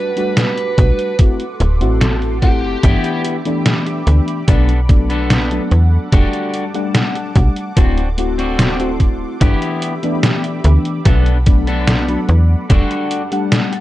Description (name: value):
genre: vaporwave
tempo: 73 BPM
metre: 4/4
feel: straight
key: G major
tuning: A4 = 440 Hz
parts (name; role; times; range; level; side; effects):
- biting lead guitar; melody; 0.0-3.2 s; G4 to B4; -23 LUFS; right 2 dB; overdrive, tape echo
- mellow FM electric piano; accompaniment; 0.0-13.8 s; E3 to F#5; -21 LUFS; left 2 dB; wide subtle chorus, analog delay
- lush unison pad; sustained chords; 0.0-13.8 s; G3 to D6; -29 LUFS; equal; chorus, phaser
- detuned 8-bit digital drum machine; drums; 0.2-13.8 s; hi-hat, snare drum; -17 LUFS; equal; none
- slap-like FM bass; bass; 0.8-12.8 s; D1 to E2; -14 LUFS; equal; tube saturation
- electronic kick drum; drums; 0.8-12.9 s; none; -12 LUFS; equal; none
- clean electric guitar; riff; 2.8-13.8 s; B3 to A4; -23 LUFS; left 1 dB; wide subtle chorus, analog delay
room: digital ambience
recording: dry, gritty hardware recording, cassette tape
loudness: -13 LUFS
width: side -15 dB against mid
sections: 0.0-13.8 A section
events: none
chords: 0.0 Em11 (rootless); 1.2 D7; 2.8 G6; 4.5 Bm7; 6.1 Em11 (rootless); 7.8 D7; 9.4 G6; 11.1 Bm7; 12.7 Em11